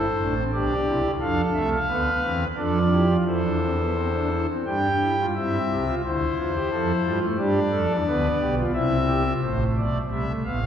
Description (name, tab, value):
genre	classical, baroque-style 4-part fugue for pipe organ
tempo	88 BPM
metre	3/4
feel	straight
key	C major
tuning	A4 = 442 Hz
part	pipe organ, foundations	solo	0.0-10.7 s	A1 to G5	-21 LUFS	equal	none
room	wet concert hall reverb, RT60 1.8 s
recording	heard from further back in the room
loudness	-21 LUFS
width	side -9 dB against mid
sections	0.0-5.4 A section; 5.4-9.4 B section; 9.4-10.7 A section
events	none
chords	0.0 Am; 0.5 G/B; 1.2 Dm; 3.3 C/E; 4.7 G5; 5.4 C; 6.7 F; 7.4 G; 8.7 C; 9.4 Fmaj7/A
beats	0.54 | 1.21 1.89 2.57 | 3.26 3.96 4.66 | 5.36 6.04 6.71 | 7.38 8.06 8.74 | 9.43 10.11